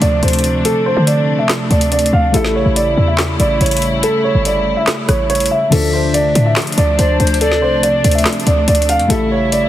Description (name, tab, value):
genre	hip hop, trap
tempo	142 BPM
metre	4/4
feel	half-time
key	D minor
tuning	A4 = 441 Hz
part	dark concert grand piano	melody	0.0-9.7 s	A4 to F5	-16 LUFS	right 2 dB	ping-pong delay
part	felt-muted upright piano	accompaniment	0.0-9.7 s	D3 to E5	-24 LUFS	left 4 dB	none
part	dark studio string section	sustained chords	0.0-9.7 s	C3 to E4	-19 LUFS	equal	none
part	short 808-style bass	bass	0.0-9.7 s	G1 to D3	-16 LUFS	equal	none
part	trap drum kit	drums	0.0-9.6 s	crash cymbal, handclaps, hi-hat, rim click, snare drum	-20 LUFS	left 1 dB	none
part	polished pan flute	second line	5.7-9.7 s	C5 to E5	-21 LUFS	equal	ping-pong delay
room	light reverb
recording	heavily compressed radio sound, multiband compression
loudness	-12 LUFS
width	side -12 dB against mid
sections	0.0-5.7 A section; 5.7-9.7 B section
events	none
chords	0.0 Dm7; 2.3 A7; 5.7 Dm7; 9.1 A7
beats	0.23 | 0.65 1.07 1.50 1.92 | 2.34 2.76 3.19 3.61 | 4.03 4.45 4.88 5.30 | 5.72 6.14 6.57 6.99 | 7.41 7.83 8.26 8.68 | 9.10 9.52